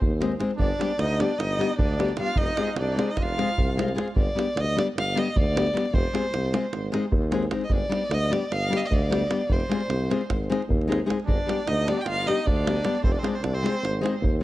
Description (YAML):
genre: balkan folk, Balkan wedding band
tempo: 304 BPM (eighths)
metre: 9/8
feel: straight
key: unclear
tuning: A4 = 440 Hz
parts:
  - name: warm tuba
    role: bass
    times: 0.0-14.4 s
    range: F1 to Eb2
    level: -28 LUFS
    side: equal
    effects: none
  - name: davul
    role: percussion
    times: 0.0-14.3 s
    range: none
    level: -27 LUFS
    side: right 1 dB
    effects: none
  - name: nylon-string guitar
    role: accompaniment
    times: 0.2-14.4 s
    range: G3 to Ab4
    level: -28 LUFS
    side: left 4 dB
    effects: tape echo
  - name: warm violin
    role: melody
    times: 0.6-13.8 s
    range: C5 to G5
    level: -29 LUFS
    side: equal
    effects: tape echo
  - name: mellow trumpet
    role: second line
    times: 0.6-3.8, 11.3-13.8 s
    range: C4 to G4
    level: -34 LUFS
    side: right 4 dB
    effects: tape echo
room: light reverb, small room ambience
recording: echo-heavy mix, cassette tape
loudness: -22 LUFS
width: side -16 dB against mid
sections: 0.0-4.1 A section; 4.1-14.4 A section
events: none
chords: 0.0 Ab; 0.6 G; 2.4 Fm; 4.1 G; 5.9 Fm; 6.7 Ab; 7.7 G; 9.5 Fm; 10.3 Ab; 11.3 G; 13.0 Fm; 13.8 Ab